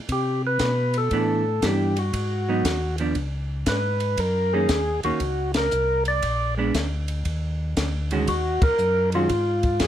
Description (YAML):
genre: soul jazz organ trio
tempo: 117 BPM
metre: 4/4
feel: swing 66% on 8ths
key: unclear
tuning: A4 = 439 Hz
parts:
  - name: percussive tonewheel organ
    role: melody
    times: 0.1-9.9 s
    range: F4 to D5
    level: -23 LUFS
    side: equal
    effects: overdrive, slow rotary speaker
  - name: mellow tonewheel organ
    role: bass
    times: 0.1-9.9 s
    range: Bb1 to C3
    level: -26 LUFS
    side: equal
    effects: chorus vibrato, slow rotary speaker
  - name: compact cocktail drum kit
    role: drums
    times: 0.1-9.9 s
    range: hi-hat, kick drum, ride cymbal, snare drum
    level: -28 LUFS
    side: equal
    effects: none
  - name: vintage hollow-body jazz guitar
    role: accompaniment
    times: 1.1-9.3 s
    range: Eb3 to Gb4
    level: -26 LUFS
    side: right 4 dB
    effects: none
room: moderate studio reverb, RT60 0.5 s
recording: none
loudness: -21 LUFS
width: side -11 dB against mid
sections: 0.0-9.9 A section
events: band accent 5.5, 8.5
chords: 0.1 Cmaj9; 2.1 Abm7; 3.2 Db5; 4.2 Gb6; 6.2 Bb7; 8.3 Ebmadd9